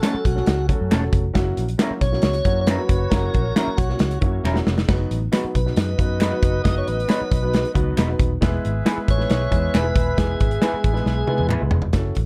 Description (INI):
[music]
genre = uptempo 1960s-style soul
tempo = 136 BPM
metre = 4/4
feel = straight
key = unclear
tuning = A4 = 441 Hz
[part]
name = tonewheel organ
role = melody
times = 0.0-11.5 s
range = F#4 to D#5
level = -29 LUFS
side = equal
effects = slow rotary speaker
[part]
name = mellow saxophone section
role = second line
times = 0.0-11.7 s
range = C#4 to E5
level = -33 LUFS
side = equal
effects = none
[part]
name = warm upright piano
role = accompaniment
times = 0.0-12.2 s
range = F#3 to C#5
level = -30 LUFS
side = equal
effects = none
[part]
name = electric guitar through a small old amp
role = stabs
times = 0.0-11.6 s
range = F#3 to B4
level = -29 LUFS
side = equal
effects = none
[part]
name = natural country drum kit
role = drums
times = 0.0-12.3 s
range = hi-hat, kick drum, snare drum, splash cymbal, toms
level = -23 LUFS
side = equal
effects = none
[part]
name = finger snaps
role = percussion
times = 0.0-11.6 s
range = none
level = -36 LUFS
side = equal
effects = none
[part]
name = vintage muted picked electric bass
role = bass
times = 0.1-12.3 s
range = D#1 to F#2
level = -26 LUFS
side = equal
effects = none
[sound]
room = light reverb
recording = dark, warm production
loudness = -20 LUFS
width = mono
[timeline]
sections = 0.0-11.9 A section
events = drum fill 4.4-4.9, 11.1-11.9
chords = 0.0 F#m; 1.4 F#7; 4.9 B/F#; 8.4 E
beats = 0.03 0.47 0.91 | 1.35 1.79 2.23 2.68 | 3.12 3.56 4.00 4.44 | 4.88 5.33 5.77 6.21 | 6.65 7.09 7.53 7.98 | 8.42 8.86 9.30 9.74 | 10.18 10.62 11.06 11.51 | 11.95